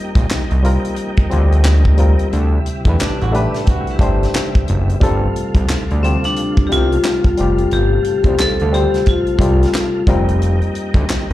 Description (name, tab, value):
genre	R&B, neo-soul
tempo	89 BPM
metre	4/4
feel	swing 61% on 16ths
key	G minor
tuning	A4 = 440 Hz
part	barky reed electric piano	accompaniment	0.0-11.3 s	G3 to C5	-21 LUFS	left 2 dB	plate reverb, slapback echo
part	tonewheel organ	sustained chords	0.0-11.3 s	C3 to G4	-26 LUFS	equal	chorus vibrato, fast rotary speaker, plate reverb
part	fat analog bass	bass	0.2-11.3 s	F1 to E2	-15 LUFS	equal	none
part	tight funk drum kit	drums	0.2-11.3 s	handclaps, hi-hat, kick drum, snare drum	-16 LUFS	equal	none
part	flamenco guitar	second line	3.0-4.9 s	D4 to A4	-28 LUFS	right 5 dB	plate reverb, slapback echo
part	vibraphone with hard mallets	melody	6.0-10.0 s	C4 to A4	-18 LUFS	left 2 dB	slapback echo, plate reverb
room	light reverb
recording	live gig heard through the venue's PA, club reverb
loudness	-13 LUFS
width	side -15 dB against mid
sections	0.0-11.3 A section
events	none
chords	0.0 F9sus4; 2.3 D9sus4; 5.0 G9sus4; 10.1 F9sus4